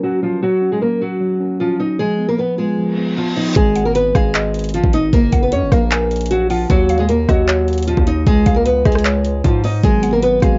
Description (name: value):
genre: hip hop, trap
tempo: 153 BPM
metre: 4/4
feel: half-time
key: G# dorian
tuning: A4 = 443 Hz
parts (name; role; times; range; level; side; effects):
- nylon-string guitar; melody; 0.0-10.6 s; E#3 to D#5; -19 LUFS; equal; low-pass filter, cassette tape
- mellow tine electric piano; accompaniment; 0.0-3.6, 9.8-10.6 s; F3 to F#4; -23 LUFS; equal; low-pass filter, cassette tape
- downlifter and reverse cymbal; sound effects; 2.9-3.6 s; none; -29 LUFS; equal; none
- distorted 808-style bass; bass; 3.6-10.6 s; F#1 to G#2; -22 LUFS; equal; distortion
- trap drum kit; drums; 3.6-10.5 s; handclaps, hi-hat, kick drum, rim click; -18 LUFS; equal; cassette tape
- mallet-like synth pluck; second line; 3.8-10.6 s; C#5 to G#5; -29 LUFS; equal; chorus, cassette tape, plate reverb, tape echo
room: light reverb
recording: home recording on cassette, nothing above 7.6 kHz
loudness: -16 LUFS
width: mono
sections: 0.0-3.6 A section; 3.6-10.6 B section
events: reverse cymbal 2.9-3.6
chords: 0.4 D#m7; 2.0 Fm7b5; 3.6 G#m7; 5.1 F#maj7; 6.7 D#m7; 8.3 C#7; 9.8 G#m7